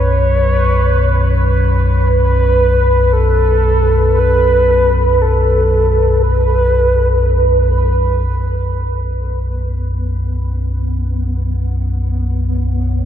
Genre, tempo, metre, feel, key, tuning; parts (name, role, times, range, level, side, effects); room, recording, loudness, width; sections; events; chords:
dark ambient drone; free time; A4 = 440 Hz
mellow horn-like synth lead; melody; 0.0-7.8 s; A4 to C#5; -16 LUFS; equal; chorus, diffuse ambient delay
deep rumbling drone; drone; 0.0-13.1 s; B1 to F#2; -14 LUFS; equal; built-in reverb, lush chorus
bubbling stepped-filter texture; texture; 0.0-8.3 s; B4; -20 LUFS; right 3 dB; chorus, built-in reverb
granular cloud pad; sustained chords; 9.5-13.1 s; B3 to F#5; -28 LUFS; left 1 dB; built-in reverb
moderate huge ambient reverb, RT60 8.3 s; dark, warm production; -12 LUFS; side -10 dB against mid
0.0-8.3 A section; 8.3-13.1 B section
0.0 Bsus2